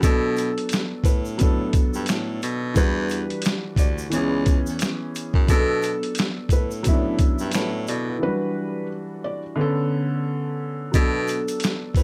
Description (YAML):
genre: lo-fi hip hop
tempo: 88 BPM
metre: 4/4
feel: swing 59% on 16ths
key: B minor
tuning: A4 = 439 Hz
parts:
  - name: felt-muted upright piano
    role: melody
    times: 0.0-12.0 s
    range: A4 to D5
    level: -31 LUFS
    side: equal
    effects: low-pass filter, analog delay, plate reverb
  - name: dark upright piano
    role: accompaniment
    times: 0.0-12.0 s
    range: D3 to D5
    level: -28 LUFS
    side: equal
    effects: low-pass filter
  - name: breathy baritone saxophone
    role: bass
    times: 0.0-12.0 s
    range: C#2 to B2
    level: -30 LUFS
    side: equal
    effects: none
  - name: boom bap sampler-style drum kit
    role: drums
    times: 0.0-12.0 s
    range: finger snaps, hi-hat, kick drum, snare drum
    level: -23 LUFS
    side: equal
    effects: none
  - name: egg shaker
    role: percussion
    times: 0.0-12.0 s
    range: none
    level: -41 LUFS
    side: equal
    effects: none
room: light reverb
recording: none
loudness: -23 LUFS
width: mono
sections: 0.0-10.9 A section; 10.9-12.0 B section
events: break 8.2-10.9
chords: 0.0 Bm7; 2.8 Em9; 4.1 C#m7; 5.5 Bm7; 8.2 Em9; 9.6 Bm9; 10.9 Bm7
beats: | 0.03 0.71 1.40 2.08 | 2.76 3.44 4.12 4.80 | 5.49 6.17 6.85 7.53 | 8.21 8.89 9.58 10.26 | 10.94 11.62